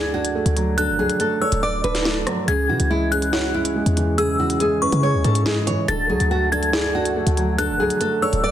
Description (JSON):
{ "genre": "hip hop, drill", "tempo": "141 BPM", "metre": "4/4", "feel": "half-time", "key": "unclear", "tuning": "A4 = 441 Hz", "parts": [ { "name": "nylon-string guitar", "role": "melody", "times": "0.0-8.5 s", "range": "E4 to D5", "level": "-24 LUFS", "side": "equal", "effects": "digital delay" }, { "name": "glassy synth bell", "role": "second line", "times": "0.0-8.5 s", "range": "C#6 to A6", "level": "-25 LUFS", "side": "left 3 dB", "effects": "chorus, digital delay" }, { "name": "felt-muted upright piano", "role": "accompaniment", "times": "0.0-8.5 s", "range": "C#3 to D5", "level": "-24 LUFS", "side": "right 4 dB", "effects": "none" }, { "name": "short 808-style bass", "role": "bass", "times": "0.0-8.5 s", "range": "D1 to C#3", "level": "-23 LUFS", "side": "equal", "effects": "none" }, { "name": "drill drum kit", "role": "drums", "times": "0.2-8.4 s", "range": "hi-hat, rim click, snare drum", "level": "-25 LUFS", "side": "equal", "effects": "vintage 12-bit sampler grit" }, { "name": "dark French horn section", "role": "sustained chords", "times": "2.5-8.5 s", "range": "C#3 to A4", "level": "-30 LUFS", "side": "left 2 dB", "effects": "none" } ], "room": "light reverb, small room ambience", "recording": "dense, heavily limited modern master", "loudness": "-18 LUFS", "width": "side -11 dB against mid", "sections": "0.0-8.5 A section", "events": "none", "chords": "0.0 D; 2.5 C#m; 5.9 D", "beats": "0.35 | 0.78 1.20 1.63 2.05 | 2.48 2.90 3.33 3.75 | 4.18 4.61 5.03 5.46 | 5.88 6.31 6.73 7.16 | 7.58 8.01 8.44" }